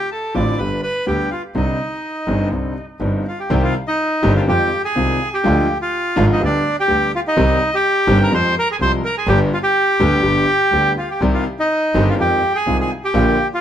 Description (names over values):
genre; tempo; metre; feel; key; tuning
tango; 125 BPM; 4/4; rubato; C minor; A4 = 440 Hz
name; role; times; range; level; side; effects
bandoneon; melody; 0.0-13.6 s; D4 to D6; -18 LUFS; equal; none
clear concert grand piano; accompaniment; 0.3-13.3 s; G1 to G4; -20 LUFS; left 1 dB; none
bright double bass; bass; 0.4-13.3 s; G1 to F2; -20 LUFS; right 1 dB; none
room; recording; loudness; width
moderate studio reverb, RT60 0.8 s; none; -15 LUFS; side -10 dB against mid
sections
0.0-3.5 A section; 3.5-13.6 A section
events
none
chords
0.0 Dm7; 0.6 G; 1.6 Cmadd9; 3.5 Cm; 4.5 Fm7; 5.4 Ddim; 6.4 G/D; 7.4 Cm; 8.3 Fmadd9; 9.3 G; 11.2 Cm; 12.2 Fm7